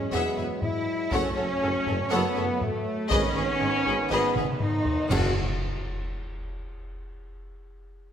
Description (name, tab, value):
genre	cinematic, epic orchestral film score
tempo	120 BPM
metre	4/4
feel	straight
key	F# dorian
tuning	A4 = 437 Hz
part	dark trombone section	sustained chords	0.0-5.3 s	C#3 to B3	-35 LUFS	right 3 dB	none
part	warm French horn section	sustained chords	0.0-5.3 s	A3 to F#4	-29 LUFS	left 2 dB	none
part	rich symphonic cello section	bass	0.0-5.4 s	F#3 to E4	-33 LUFS	right 2 dB	none
part	rich studio violin section	melody	0.1-5.4 s	G#4 to F#5	-34 LUFS	left 4 dB	none
part	rich symphonic violin section	second line	0.1-5.4 s	D#4 to E5	-34 LUFS	left 2 dB	none
part	warm symphonic viola section	accompaniment	0.1-5.4 s	C#4 to A4	-35 LUFS	right 1 dB	none
part	mellow tuba	bass	0.1-5.3 s	E1 to G#1	-35 LUFS	right 3 dB	none
part	rich symphonic double bass section	bass	0.1-5.4 s	F#1 to F#2	-35 LUFS	right 3 dB	none
part	taiko ensemble	drums	0.6-5.2 s	none	-31 LUFS	equal	none
part	cymbal swell, clash cymbals and concert bass drum	percussion	1.1-6.1 s	none	-35 LUFS	equal	none
part	timpani	percussion	5.1-5.3 s	F#2	-34 LUFS	left 1 dB	none
room	wet scoring stage reverb, RT60 1.8 s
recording	none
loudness	-24 LUFS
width	side -8 dB against mid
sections	0.0-5.1 A section; 5.1-7.1 B section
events	drum fill 4.4-5.1; band accent 5.1-5.6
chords	0.0 Eadd9; 1.1 F#m; 3.1 G#m; 5.1 F#5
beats	0.12 0.62 | 1.12 1.62 2.12 2.62 | 3.12 3.62 4.11 4.61 | 5.11 5.61